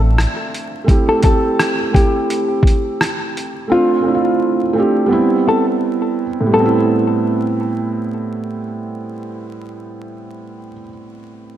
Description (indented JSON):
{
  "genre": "lo-fi hip hop",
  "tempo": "85 BPM",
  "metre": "4/4",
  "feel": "swing 55% on 16ths",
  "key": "A minor",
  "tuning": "A4 = 443 Hz",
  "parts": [
    { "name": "felt-muted upright piano", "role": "accompaniment", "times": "0.0-11.6 s", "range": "A2 to E5", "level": "-17 LUFS", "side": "right 2 dB", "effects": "cassette tape, low-pass filter" },
    { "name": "dusty soul sampler-style drum kit", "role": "drums", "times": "0.2-3.5 s", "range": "hi-hat, kick drum, rim click", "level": "-16 LUFS", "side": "equal", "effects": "overdrive" },
    { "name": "hollow-body jazz guitar", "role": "melody", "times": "1.1-8.6 s", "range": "F4 to A4", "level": "-20 LUFS", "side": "left 3 dB", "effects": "low-pass filter, ping-pong delay" }
  ],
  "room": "moderate lush hall reverb, RT60 2.1 s",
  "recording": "dreamy mix soaked in reverb, vinyl crackle",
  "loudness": "-14 LUFS",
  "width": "side -11 dB against mid",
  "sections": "0.0-6.5 A section; 6.5-9.3 B section",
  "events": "none",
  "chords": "0.0 Bbmaj9 (rootless); 0.9 Am7; 3.7 Fmaj13/A; 5.1 Am9/G (rootless)",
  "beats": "0.17 | 0.88 1.58 2.29 3.00 | 3.70 4.41 5.11 5.82 | 6.53 7.23 7.94 8.64"
}